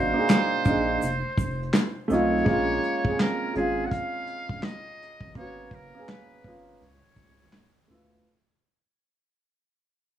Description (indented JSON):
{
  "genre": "lo-fi hip hop",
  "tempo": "83 BPM",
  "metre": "4/4",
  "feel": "swing 63% on 16ths",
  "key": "Db major",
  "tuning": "A4 = 440 Hz",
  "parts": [
    { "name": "trumpet with metal mute", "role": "melody", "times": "0.0-7.9 s", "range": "Ab4 to Gb5", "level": "-30 LUFS", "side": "equal", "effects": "low-pass filter, tape echo, plate reverb" },
    { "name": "warm upright piano", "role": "accompaniment", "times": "0.0-8.3 s", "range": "Ab3 to Ab4", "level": "-26 LUFS", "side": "right 2 dB", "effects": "cassette tape, low-pass filter, plate reverb" },
    { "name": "saturated sub bass", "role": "bass", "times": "0.0-8.2 s", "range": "F1 to D2", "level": "-33 LUFS", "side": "equal", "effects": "none" },
    { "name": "vintage brush drum kit", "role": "drums", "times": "0.3-8.3 s", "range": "handclaps, hi-hat, kick drum, snare drum", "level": "-25 LUFS", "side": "equal", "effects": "none" },
    { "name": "egg shaker", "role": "percussion", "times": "0.3-2.3 s", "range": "none", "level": "-47 LUFS", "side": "left 9 dB", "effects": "none" }
  ],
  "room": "moderate studio reverb, RT60 0.6 s",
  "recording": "vinyl crackle, small room ambience",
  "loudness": "-23 LUFS",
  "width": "side -10 dB against mid",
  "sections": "0.0-8.2 A section",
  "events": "fade-out 0.0-8.2",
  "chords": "0.0 Cm7b5; 1.0 F7; 2.5 Bbm9; 5.4 Abm11; 6.8 Db7alt",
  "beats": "0.29 1.02 1.74 | 2.46 3.19 3.91 4.63 | 5.36 6.08 6.80 7.52"
}